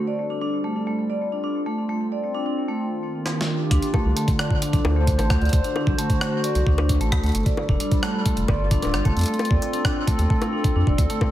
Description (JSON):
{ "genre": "IDM", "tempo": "132 BPM", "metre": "4/4", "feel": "straight", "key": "D phrygian", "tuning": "A4 = 440 Hz", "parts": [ { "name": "hollow soft pad", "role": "sustained chords", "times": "0.0-11.3 s", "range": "D3 to C5", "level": "-28 LUFS", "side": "equal", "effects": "chorus" }, { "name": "bubbling stepped-filter texture", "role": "texture", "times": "0.0-2.8, 11.0-11.3 s", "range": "C4 to D5", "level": "-42 LUFS", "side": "right 1 dB", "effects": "none" }, { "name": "vibraphone with medium mallets", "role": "arpeggios", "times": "0.1-11.2 s", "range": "A3 to D5", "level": "-26 LUFS", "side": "equal", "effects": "vintage 12-bit sampler grit, ping-pong delay" }, { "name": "jungle sampler-style drum kit", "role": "drums", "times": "3.3-11.3 s", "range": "bongos, hi-hat, rim click, snare drum", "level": "-29 LUFS", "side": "left 1 dB", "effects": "diffuse ambient delay" }, { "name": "round analog bass", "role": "bass", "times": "3.7-11.1 s", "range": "D1 to F2", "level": "-21 LUFS", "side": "equal", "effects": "tube saturation" }, { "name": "electronic kick drum", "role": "drums", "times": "3.7-11.3 s", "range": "none", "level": "-22 LUFS", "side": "equal", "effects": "none" } ], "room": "light reverb", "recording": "none", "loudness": "-20 LUFS", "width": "side -13 dB against mid", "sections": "0.0-3.7 A section; 3.7-11.3 B section", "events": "drum fill 3.3-3.7", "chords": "0.1 G5; 1.9 F; 2.8 Ebmaj7; 3.7 Dm7; 5.5 D7; 7.3 G5; 9.2 F" }